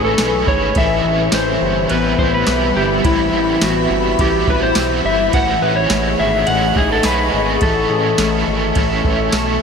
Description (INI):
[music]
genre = dream pop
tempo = 105 BPM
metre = 4/4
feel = straight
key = unclear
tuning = A4 = 439 Hz
[part]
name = electric slide guitar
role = melody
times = 0.0-9.6 s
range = E4 to F#5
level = -18 LUFS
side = left 1 dB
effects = tape echo
[part]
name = cranked stack guitar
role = accompaniment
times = 0.0-9.6 s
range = A2 to A4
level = -22 LUFS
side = right 4 dB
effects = overdrive, tremolo, ensemble chorus
[part]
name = ethereal airy pad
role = sustained chords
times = 0.0-9.6 s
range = G3 to C#6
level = -22 LUFS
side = right 1 dB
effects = ensemble chorus, built-in reverb, phaser
[part]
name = electric guitar at the edge of break-up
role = arpeggios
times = 0.0-9.6 s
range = E3 to A4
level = -22 LUFS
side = left 5 dB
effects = analog chorus, tape echo
[part]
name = chorused synth bass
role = bass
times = 0.0-9.6 s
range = G1 to B1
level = -22 LUFS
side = equal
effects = none
[part]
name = soft vintage rhythm box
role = drums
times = 0.2-9.5 s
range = kick drum, ride cymbal, snare drum, tambourine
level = -21 LUFS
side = equal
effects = none
[sound]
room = wet huge ambient reverb, RT60 8.6 s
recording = dreamy mix soaked in reverb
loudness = -13 LUFS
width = side -6 dB against mid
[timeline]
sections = 0.0-9.6 A section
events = none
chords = 0.0 C#madd9; 0.8 Cmaj7; 5.3 C#madd9; 7.6 A